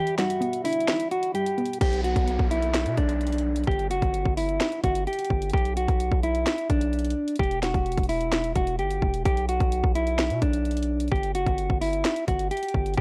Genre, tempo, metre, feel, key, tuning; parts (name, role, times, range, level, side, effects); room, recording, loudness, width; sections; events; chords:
hip hop, trap; 129 BPM; 4/4; half-time; A4 = 439 Hz
mellow electric guitar; melody; 0.0-13.0 s; D4 to G4; -29 LUFS; equal; low-pass filter, analog delay
warbly dusty pluck; accompaniment; 0.0-1.8 s; E3 to E4; -33 LUFS; equal; chorus, low-pass filter
mellow brass ensemble; sustained chords; 0.0-1.8 s; G3 to B5; -43 LUFS; equal
trap drum kit; drums; 0.1-13.0 s; crash cymbal, hi-hat, kick drum, snare drum; -29 LUFS; equal; overdrive
distorted 808-style bass; bass; 1.8-13.0 s; E1 to B2; -30 LUFS; equal; distortion
downlifter; sound effects; 1.8-5.5 s; -41 LUFS; equal
little or no reverb; dry, gritty hardware recording, cassette tape; -25 LUFS; mono
0.0-1.8 A section; 1.8-13.0 B section
break 0.0-1.8
0.0 Em7; 1.8 Bm; 3.7 Emadd9/F#; 5.5 Bm; 7.4 Em; 9.3 Bm; 11.1 Emadd9/F#